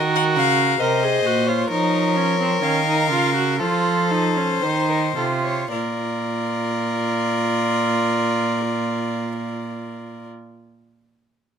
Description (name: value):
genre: classical, baroque-style fugue for string quartet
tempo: 53-71 BPM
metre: 4/4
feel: straight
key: unclear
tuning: A4 = 440 Hz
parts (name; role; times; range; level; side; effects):
- rich violin; second line; 0.0-10.3 s; A4 to Db5; -26 LUFS; left 2 dB; none
- rich viola; accompaniment; 0.0-10.3 s; C4 to Bb4; -24 LUFS; right 3 dB; none
- rich cello; bass; 0.0-10.3 s; Bb2 to F3; -24 LUFS; right 5 dB; none
- warm violin; melody; 0.2-10.3 s; C5 to Gb5; -24 LUFS; left 8 dB; none
room: moderate large studio reverb, RT60 1.3 s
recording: close, detailed microphones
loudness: -18 LUFS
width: side -8 dB against mid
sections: 0.0-5.7 A section; 5.7-10.2 B section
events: slowing down 0.0-5.7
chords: 0.0 Cm7b5; 1.7 Bbm/F; 3.6 F7; 5.7 Bb